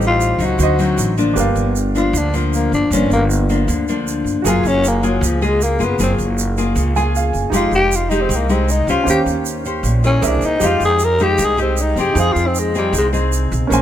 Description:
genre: bossa nova.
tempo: 156 BPM.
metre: 4/4.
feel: straight.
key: F minor.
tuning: A4 = 439 Hz.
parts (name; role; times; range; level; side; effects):
clear baby grand piano; accompaniment; 0.0-13.8 s; C4 to Ab5; -24 LUFS; right 5 dB; none.
nylon-string guitar; accompaniment; 0.0-13.8 s; G2 to C5; -19 LUFS; left 3 dB; none.
upright bass; bass; 0.0-13.8 s; F1 to F2; -19 LUFS; right 1 dB; none.
egg shaker; percussion; 0.0-13.8 s; none; -28 LUFS; right 8 dB; none.
growling tenor saxophone; melody; 0.1-13.1 s; F3 to Bb4; -18 LUFS; left 2 dB; none.
room: light reverb.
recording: none.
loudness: -14 LUFS.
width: side -11 dB against mid.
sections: 0.0-1.4 A section; 1.4-13.7 B section.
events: tenor saxophone solo 1.4-13.8; grand piano fill 6.8-7.5.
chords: 0.0 Am7b5; 0.6 D7b9; 1.4 Gm7; 4.5 Gbmaj9; 7.5 Fm9; 9.1 Eb13; 10.2 C7alt; 10.6 Fm9; 12.2 Fm7.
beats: 0.21 0.60 0.98 | 1.37 1.76 2.14 2.53 | 2.91 3.30 3.68 4.07 | 4.46 4.84 5.23 5.61 | 6.00 6.38 6.77 7.15 | 7.54 7.93 8.31 8.70 | 9.08 9.47 9.85 10.24 | 10.62 11.01 11.40 11.78 | 12.17 12.55 12.94 13.32 | 13.71.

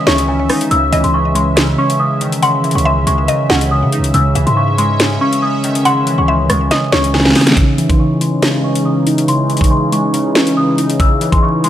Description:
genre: hip hop, drill.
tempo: 140 BPM.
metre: 4/4.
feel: half-time.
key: C# harmonic minor.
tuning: A4 = 438 Hz.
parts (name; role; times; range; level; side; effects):
small celesta; melody; 0.0-11.7 s; G#5 to E6; -18 LUFS; left 1 dB; low-pass filter.
mallet-like synth pluck; second line; 0.0-7.1 s; C#5 to F#5; -21 LUFS; left 1 dB; chorus, ping-pong delay.
glassy digital keys; accompaniment; 0.0-11.7 s; C#3 to D#4; -16 LUFS; right 1 dB; chorus, low-pass filter.
sweeping resonant pad; sustained chords; 0.0-11.7 s; C#3 to E5; -20 LUFS; equal; chorus, low-pass filter.
hard-hitting 808-style bass; bass; 0.1-7.3 s; C#2 to C#3; -18 LUFS; equal; none.
drill drum kit; drums; 0.1-11.7 s; hi-hat, kick drum, rim click, snare drum; -16 LUFS; equal; none.
room: light reverb.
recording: vinyl crackle.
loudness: -11 LUFS.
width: side -11 dB against mid.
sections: 0.0-7.6 A section; 7.6-11.7 B section.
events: drum fill 7.1-7.6; filter sweep 7.6-11.7.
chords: 0.0 C#madd9.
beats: 0.28 | 0.71 1.14 1.57 2.00 | 2.42 2.85 3.28 3.71 | 4.14 4.57 5.00 5.42 | 5.85 6.28 6.71 7.14 | 7.57 8.00 8.43 8.85 | 9.28 9.71 10.14 10.57 | 11.00 11.43.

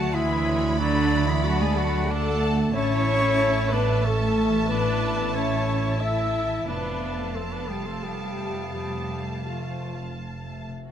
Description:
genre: cinematic, emotional film score for orchestra.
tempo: 91 BPM.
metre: 3/4.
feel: uneven beats, rubato.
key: unclear.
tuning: A4 = 440 Hz.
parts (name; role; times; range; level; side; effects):
clear symphonic violin section; melody; 0.0-10.7 s; A5 to B5; -34 LUFS; left 2 dB; none.
bright silver concert flute; second line; 0.0-10.2 s; D5 to E6; -34 LUFS; left 1 dB; none.
mellow cor anglais; second line; 0.0-10.2 s; F#3 to A4; -34 LUFS; right 2 dB; none.
warm symphonic violin section; second line; 0.0-10.7 s; B4 to A5; -37 LUFS; left 1 dB; none.
rich studio viola section; accompaniment; 0.0-10.2 s; D4 to E5; -34 LUFS; right 1 dB; none.
warm French horn section; sustained chords; 0.0-10.2 s; D4 to E5; -29 LUFS; left 3 dB; none.
concert harp; arpeggios; 0.0-10.9 s; F2 to F#5; -32 LUFS; left 7 dB; none.
rich symphonic cello section; bass; 0.0-10.2 s; D3 to E4; -30 LUFS; right 3 dB; none.
rich symphonic double bass section; bass; 0.0-10.7 s; F1 to D2; -28 LUFS; right 4 dB; none.
room: moderate concert hall reverb, RT60 1.8 s.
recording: close, detailed microphones.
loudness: -22 LUFS.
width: side -9 dB against mid.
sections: 0.0-10.9 A section.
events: none.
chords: 0.0 D; 2.7 A; 6.7 F.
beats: 0.14 | 0.79 1.45 2.10 | 2.75 3.40 4.05 | 4.70 5.35 6.00 | 6.67 7.35 8.03 | 8.74 9.47 10.20.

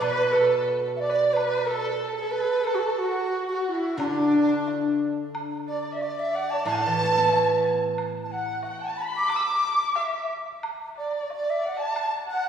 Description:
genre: chinese traditional, Chinese chamber ensemble.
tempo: 91 BPM.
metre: 2/4.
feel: rubato.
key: D gong mode.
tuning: A4 = 440 Hz.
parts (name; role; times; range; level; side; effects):
breathy bright large dizi; melody; 0.0-12.5 s; D4 to D6; -25 LUFS; right 1 dB; none.
warm erhu; second line; 0.0-12.5 s; D4 to E6; -29 LUFS; left 2 dB; none.
steel-string zither; accompaniment; 0.0-8.6 s; A2 to E4; -27 LUFS; right 2 dB; none.
woodblock; percussion; 0.0-12.1 s; none; -38 LUFS; right 2 dB; none.
room: wet concert hall reverb, RT60 2.2 s.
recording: heard from further back in the room, studio ambience.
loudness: -23 LUFS.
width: side -8 dB against mid.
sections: 0.0-5.3 A section; 5.3-12.5 B section.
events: none.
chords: none.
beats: | 0.02 0.69 | 1.36 2.02 | 2.68 3.33 | 3.99 4.67 | 5.34 6.01 | 6.67 7.33 | 7.98 8.64 | 9.30 9.96 | 10.63 11.30 | 11.96.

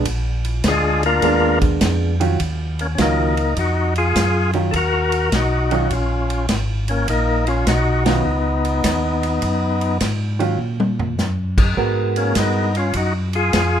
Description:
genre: soul jazz organ trio.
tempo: 102 BPM.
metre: 4/4.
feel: swing 66% on 8ths.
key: Eb minor.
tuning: A4 = 441 Hz.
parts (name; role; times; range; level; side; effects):
vintage hollow-body jazz guitar; accompaniment; 0.0-12.7 s; Eb3 to Bb4; -22 LUFS; right 5 dB; none.
mellow tonewheel organ; bass; 0.0-13.8 s; Ab1 to Bb2; -21 LUFS; equal; slow rotary speaker.
warm soul drum kit; drums; 0.1-13.7 s; crash cymbal, hi-hat, kick drum, ride cymbal, snare drum, toms; -23 LUFS; equal; none.
percussive tonewheel organ; melody; 0.7-13.8 s; Ab3 to Bb4; -19 LUFS; left 2 dB; overdrive, fast rotary speaker.
room: light reverb.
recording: minimal, uncompressed stereo recording, faint mains hum.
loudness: -16 LUFS.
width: side -9 dB against mid.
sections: 0.0-2.4 A section; 2.4-13.8 B section.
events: tonewheel organ solo 0.0-2.4; band accent 8.0; drum fill 10.6-11.2.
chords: 0.1 Bb7b9; 2.4 Ebm9; 11.8 Abm9.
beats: | 0.06 0.64 1.22 1.81 | 2.39 2.98 3.56 4.15 | 4.73 5.32 5.91 6.49 | 7.08 7.66 8.25 8.84 | 9.42 10.01 10.59 11.18 | 11.77 12.35 12.94 13.53.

